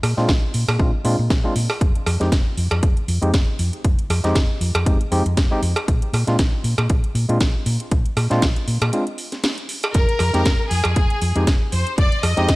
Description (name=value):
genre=nu-disco, nu disco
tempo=118 BPM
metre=4/4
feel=swing 55% on 16ths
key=F dorian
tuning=A4 = 440 Hz
part: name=hollow-body short-scale fingered electric bass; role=bass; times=0.0-12.6 s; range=F1 to Bb2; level=-21 LUFS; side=equal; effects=none
part: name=house drum kit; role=drums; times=0.0-12.6 s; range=hi-hat, snare drum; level=-26 LUFS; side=equal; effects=studio reverb
part: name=cowbell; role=percussion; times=0.0-12.3 s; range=none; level=-26 LUFS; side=right 1 dB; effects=none
part: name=overdriven tine electric piano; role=accompaniment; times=0.2-12.5 s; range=Ab3 to G4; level=-24 LUFS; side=equal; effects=sidechain pumping, low-pass filter, analog delay
part: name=electronic kick drum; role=drums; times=0.3-12.6 s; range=none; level=-19 LUFS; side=equal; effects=studio reverb
part: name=clear chamber violin section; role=melody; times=9.9-12.6 s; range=Ab4 to Eb5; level=-23 LUFS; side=left 1 dB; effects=analog delay
room=digital ambience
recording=dry, gritty hardware recording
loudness=-17 LUFS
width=side -21 dB against mid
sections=0.0-12.6 A section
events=filter sweep on tine electric piano 0.0-12.6; break 8.9-9.9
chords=0.0 Bb9; 1.8 Fm7; 5.9 N.C.; 9.9 Fm